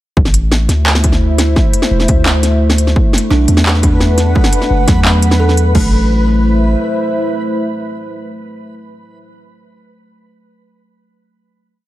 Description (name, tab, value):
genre	half-time drum and bass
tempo	172 BPM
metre	4/4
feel	half-time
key	A dorian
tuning	A4 = 440 Hz
part	dark analog pad	sustained chords	0.5-9.3 s	A3 to F#5	-18 LUFS	equal	chorus, sidechain pumping
part	long sustained 808-style bass	bass	0.2-6.8 s	E1 to E2	-12 LUFS	equal	none
part	electronic kick drum	drums	0.2-5.8 s	none	-13 LUFS	equal	none
part	industrial drum kit	drums	0.3-5.8 s	crash cymbal, handclaps, hi-hat, snare drum	-16 LUFS	equal	none
part	backwards swelling texture	texture	3.7-5.8 s	B4	-24 LUFS	equal	built-in reverb
part	buzzing kalimba	arpeggios	3.3-5.9 s	F#3 to A4	-20 LUFS	right 2 dB	tape echo
room	light reverb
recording	none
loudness	-10 LUFS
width	side -15 dB against mid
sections	0.2-5.7 drop; 5.7-8.5 final chord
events	drop 0.2-5.7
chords	0.2 Am; 3.0 Bm7; 5.7 Am